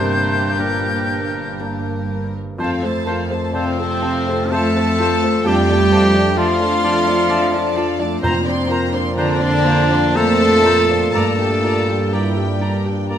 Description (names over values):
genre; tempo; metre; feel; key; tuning
cinematic, emotional film score for orchestra; 63 BPM; 3/4; uneven beats, rubato; F major; A4 = 440 Hz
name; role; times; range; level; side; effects
warm symphonic violin section; melody; 0.0-13.1 s; Bb4 to A5; -26 LUFS; left 4 dB; none
bright clarinet; second line; 0.0-13.1 s; C4 to A4; -19 LUFS; equal; none
bright concert flute; second line; 0.0-13.2 s; A5 to G6; -28 LUFS; left 2 dB; none
clear oboe; second line; 0.0-13.2 s; Bb4 to D5; -29 LUFS; right 2 dB; none
warm studio violin section; second line; 0.0-13.2 s; G4 to C6; -27 LUFS; left 1 dB; none
dark symphonic viola section; accompaniment; 0.0-13.2 s; F3 to A4; -28 LUFS; right 1 dB; none
felt-muted upright piano; accompaniment; 0.0-13.2 s; F2 to E5; -25 LUFS; left 1 dB; none
mellow French horn section; sustained chords; 0.0-13.2 s; Bb2 to D4; -24 LUFS; left 4 dB; none
warm symphonic cello section; bass; 0.0-13.1 s; G2 to A3; -22 LUFS; right 3 dB; none
warm symphonic double bass section; bass; 0.0-13.2 s; G1 to G2; -24 LUFS; right 3 dB; none
timpani; percussion; 8.2-9.6 s; F2; -26 LUFS; left 1 dB; none
room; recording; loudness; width
moderate scoring stage reverb, RT60 1.6 s; close, detailed microphones; -15 LUFS; side -9 dB against mid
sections
0.0-2.6 A section; 2.6-13.2 B section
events
none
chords
0.0 Gm; 2.6 F; 5.5 Dm/F; 8.2 Bbadd9/F; 11.1 Gm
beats
0.59 1.60 | 2.59 3.54 4.52 | 5.46 6.37 7.30 | 8.22 9.17 10.15 | 11.13 12.12 13.10